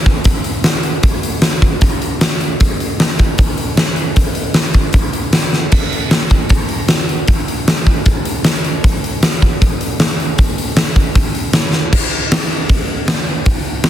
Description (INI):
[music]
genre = rock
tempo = 154 BPM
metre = 4/4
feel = straight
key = none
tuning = none
[part]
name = huge arena drum kit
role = drums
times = 0.1-13.9 s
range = crash cymbal, hi-hat, kick drum, snare drum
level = -12 LUFS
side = equal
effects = none
[sound]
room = light reverb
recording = dense, heavily limited modern master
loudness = -12 LUFS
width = side -11 dB against mid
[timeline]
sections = 0.0-11.9 A section; 11.9-13.9 B section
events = drum fill 5.5, 11.7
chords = none